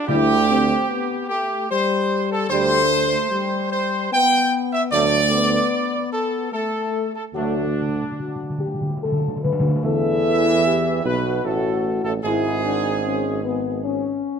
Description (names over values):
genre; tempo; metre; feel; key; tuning
classical, ceremonial fanfare; 75 BPM; 3/4; straight; D mixolydian; A4 = 442 Hz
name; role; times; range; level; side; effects
clear trumpet section; melody; 0.0-14.2 s; D4 to G5; -21 LUFS; right 1 dB; none
clear trombone section; sustained chords; 0.1-14.2 s; G#2 to A3; -27 LUFS; right 5 dB; none
dark French horn section; sustained chords; 0.1-14.4 s; G3 to B4; -24 LUFS; left 5 dB; none
warm tuba; bass; 0.1-14.2 s; G#1 to E2; -24 LUFS; right 5 dB; none
timpani; percussion; 0.1-1.2, 7.3-11.0 s; D3; -25 LUFS; equal; none
room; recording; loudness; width
moderate recital hall reverb, RT60 1.7 s; close, detailed microphones; -18 LUFS; side -7 dB against mid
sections
0.0-9.8 A section; 9.8-14.4 B section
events
timpani fill 7.3-9.8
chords
0.1 C5/D; 4.9 D; 9.8 Gmaj13; 12.2 G#madd11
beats
| 0.09 0.88 1.70 | 2.50 3.30 4.12 | 4.92 5.72 6.52 | 7.34 8.17 9.00 | 9.84 10.65 11.45 | 12.24 13.04 13.84